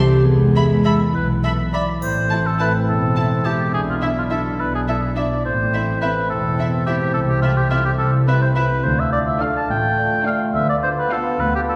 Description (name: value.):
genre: cinematic, playful, whimsical film cue.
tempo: 70 BPM (dotted quarters).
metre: 6/8.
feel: straight.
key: A minor.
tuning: A4 = 440 Hz.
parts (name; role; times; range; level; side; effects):
warm studio violin section; melody; 0.0-11.3 s; E5 to B5; -34 LUFS; equal; none.
mellow clarinet; second line; 0.0-1.1 s; G4 to G#4; -23 LUFS; equal; none.
warm studio violin section; second line; 0.0-11.3 s; D4 to B5; -34 LUFS; equal; none.
warm studio viola section; accompaniment; 0.0-11.3 s; A3 to E4; -37 LUFS; equal; none.
concert harp; arpeggios; 0.0-11.8 s; A2 to E5; -25 LUFS; equal; none.
dark studio cello section; bass; 0.0-11.8 s; C2 to G#3; -28 LUFS; equal; none.
warm studio double bass section; bass; 0.0-11.8 s; E1 to E2; -25 LUFS; equal; none.
warm oboe; second line; 0.9-11.8 s; E4 to A5; -24 LUFS; equal; none.
warm French horn section; sustained chords; 2.0-11.8 s; A3 to F4; -29 LUFS; equal; none.
triangle; percussion; 2.0-3.1 s; none; -45 LUFS; equal; none.
room: wet scoring stage reverb, RT60 1.8 s.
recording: heard from further back in the room.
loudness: -19 LUFS.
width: mono.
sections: 0.0-2.0 A section; 2.0-11.8 B section.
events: none.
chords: 0.3 E; 2.0 Am; 3.7 E5/B; 5.5 Am; 7.2 Am/C; 8.8 Dm; 10.5 Bdim/D.